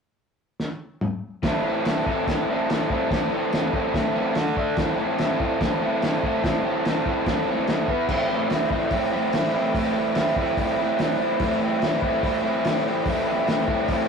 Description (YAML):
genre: garage rock duo or trio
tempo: 145 BPM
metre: 4/4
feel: straight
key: A minor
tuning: A4 = 442 Hz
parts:
  - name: cloth-damped thuddy drum kit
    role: drums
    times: 0.6-14.0 s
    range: crash cymbal, hi-hat, kick drum, snare drum, toms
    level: -27 LUFS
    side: equal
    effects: none
  - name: crunchy overdriven guitar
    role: riff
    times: 1.4-14.1 s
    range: A2 to B4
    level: -22 LUFS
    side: equal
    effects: none
room: moderate stone room reverb, RT60 1.0 s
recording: rough rehearsal-room recording, warm saturation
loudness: -21 LUFS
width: side -6 dB against mid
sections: 0.0-1.4 A section; 1.4-8.1 B section; 8.1-14.1 C section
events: drum fill 0.6-1.4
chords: 0.0 N.C.; 1.4 Am; 4.4 D5; 4.8 Am; 7.9 E5; 8.1 Am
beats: 0.18 0.60 1.02 | 1.44 1.86 2.27 2.69 | 3.11 3.53 3.94 4.36 | 4.77 5.19 5.61 6.02 | 6.43 6.85 7.26 7.68 | 8.09 8.50 8.92 9.33 | 9.74 10.16 10.57 10.99 | 11.40 11.81 12.23 12.64 | 13.05 13.47 13.88